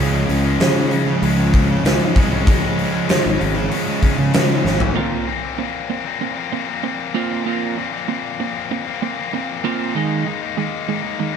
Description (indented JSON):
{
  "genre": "quiet-loud alternative rock",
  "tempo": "96 BPM",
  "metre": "4/4",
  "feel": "straight",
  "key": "Bb minor",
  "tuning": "A4 = 440 Hz",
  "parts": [
    { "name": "distorted electric guitar", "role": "riff", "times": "0.0-4.6 s", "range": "Db3 to Db4", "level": "-24 LUFS", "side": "equal", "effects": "overdrive" },
    { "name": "sludgy distorted guitar", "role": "riff", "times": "0.0-4.9 s", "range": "Db3 to Db4", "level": "-24 LUFS", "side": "right 8 dB", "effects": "overdrive" },
    { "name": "tight distorted guitar", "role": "riff", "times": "0.0-11.4 s", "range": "Bb2 to Eb4", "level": "-23 LUFS", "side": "left 8 dB", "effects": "distortion" },
    { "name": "fuzz fingered electric bass", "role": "bass", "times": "0.0-4.9 s", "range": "Ab1 to Db3", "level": "-20 LUFS", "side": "equal", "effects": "overdrive" },
    { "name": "huge arena drum kit", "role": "drums", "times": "0.3-4.9 s", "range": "hi-hat, kick drum, snare drum, toms", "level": "-19 LUFS", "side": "equal", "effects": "none" },
    { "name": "twelve-string electric guitar", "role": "arpeggios", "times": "5.0-11.4 s", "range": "Eb3 to F4", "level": "-24 LUFS", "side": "right 7 dB", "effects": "none" }
  ],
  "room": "light reverb",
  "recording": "band playing live in one room",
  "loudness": "-17 LUFS",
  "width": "side -7 dB against mid",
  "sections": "0.0-5.0 A section; 5.0-11.4 B section",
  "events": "drum fill 4.7-5.0; half time 5.0-11.4",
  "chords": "0.0 Db; 5.0 Bbsus2; 10.0 Ebsus4",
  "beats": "0.60 1.23 1.85 | 2.47 3.09 3.71 4.34 | 4.96 5.58 6.21 6.83 | 7.46 8.08 8.70 9.33 | 9.95 10.57 11.20"
}